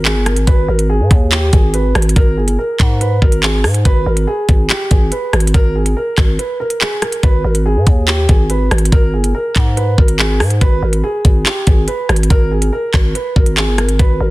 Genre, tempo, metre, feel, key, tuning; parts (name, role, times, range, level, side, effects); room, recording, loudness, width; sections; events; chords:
hip hop, drill; 142 BPM; 4/4; half-time; G# harmonic minor; A4 = 440 Hz
dark concert grand piano; melody; 0.0-14.3 s; G4 to B4; -20 LUFS; right 2 dB; tape echo
growling 808-style bass; bass; 0.0-14.3 s; G1 to G#2; -15 LUFS; equal
drill drum kit; drums; 0.1-14.1 s; handclaps, hi-hat, kick drum, rim click; -12 LUFS; equal; soft clipping on snare, vintage 12-bit sampler grit
digital ambience; dense, heavily limited modern master; -11 LUFS; side -19 dB against mid
0.0-7.2 A section; 7.2-14.3 A section
break 6.4-7.2
0.5 G#sus2